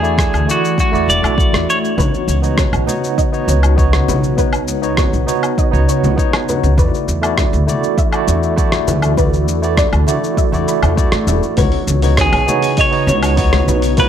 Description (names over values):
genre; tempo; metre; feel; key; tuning
sunset chillout; 100 BPM; 4/4; straight; unclear; A4 = 438 Hz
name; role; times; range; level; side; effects
clean electric guitar; melody; 0.0-1.8, 12.2-14.1 s; F#4 to D5; -18 LUFS; equal; spring reverb, digital delay
barky tine electric piano; accompaniment; 0.0-14.1 s; A3 to E5; -19 LUFS; moving between left 6 dB and right 6 dB; medium stereo tremolo, auto-pan, ping-pong delay
ethereal airy pad; sustained chords; 0.0-14.1 s; Db3 to A4; -22 LUFS; right 1 dB; ensemble chorus, built-in reverb
upright bass; bass; 0.0-14.1 s; E1 to A2; -16 LUFS; equal; tube saturation
dusty soul sampler-style drum kit; drums; 0.0-14.1 s; hi-hat, rim click, shaker, woodblock; -22 LUFS; left 1 dB; overdrive
electronic kick drum; drums; 0.2-14.1 s; none; -17 LUFS; equal; none
soft round pluck; arpeggios; 2.0-14.1 s; Cb5 to B5; -25 LUFS; equal; ensemble chorus, ping-pong delay
congas; percussion; 2.0-14.1 s; none; -24 LUFS; left 4 dB; none
room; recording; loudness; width
light reverb; none; -12 LUFS; side -9 dB against mid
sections
0.0-11.6 A section; 11.6-14.1 B section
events
none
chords
0.0 E9sus4; 2.0 Db9sus4; 6.8 E9sus4; 11.6 Db9sus4